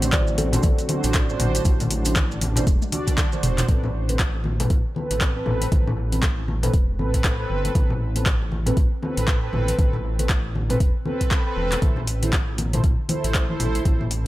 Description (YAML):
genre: afro house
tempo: 118 BPM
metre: 4/4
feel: swing 60% on 16ths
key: A dorian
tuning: A4 = 440 Hz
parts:
  - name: kalimba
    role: melody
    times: 0.0-3.1 s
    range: A4 to F#5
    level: -32 LUFS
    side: left 1 dB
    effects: dub echo
  - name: warm analog pad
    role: sustained chords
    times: 0.0-3.7 s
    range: D3 to F#4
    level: -31 LUFS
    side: right 1 dB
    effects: chorus, sidechain pumping
  - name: mellow synth brass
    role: stabs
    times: 0.0-14.0 s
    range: C4 to D5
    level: -28 LUFS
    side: right 2 dB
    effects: chorus, sidechain pumping, analog delay
  - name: dark detuned saw bass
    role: bass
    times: 0.0-14.3 s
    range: E1 to A1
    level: -25 LUFS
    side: equal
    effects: sidechain pumping
  - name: afro-pop drum kit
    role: drums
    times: 0.0-14.2 s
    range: handclaps, hi-hat, toms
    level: -27 LUFS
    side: left 1 dB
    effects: overdrive
  - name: congas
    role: percussion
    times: 0.0-14.1 s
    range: none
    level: -29 LUFS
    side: left 2 dB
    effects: analog delay
  - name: maracas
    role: percussion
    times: 0.0-3.7 s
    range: none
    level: -34 LUFS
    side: right 3 dB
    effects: analog delay
  - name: electronic kick drum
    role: drums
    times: 0.1-14.0 s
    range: none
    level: -21 LUFS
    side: equal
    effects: none
room: light reverb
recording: echo-heavy mix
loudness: -19 LUFS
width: side -16 dB against mid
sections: 0.0-3.7 A section; 3.7-14.3 B section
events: drop 0.0-3.7; drum fill 2.7-3.7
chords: 0.0 D7/A; 3.7 Amadd9; 11.8 C6/A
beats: 0.13 0.64 1.14 | 1.65 2.16 2.67 3.18 | 3.69 4.19 4.70 5.21 | 5.72 6.23 6.74 7.25 | 7.75 8.26 8.77 9.28 | 9.79 10.30 10.80 11.31 | 11.82 12.33 12.84 13.35 | 13.86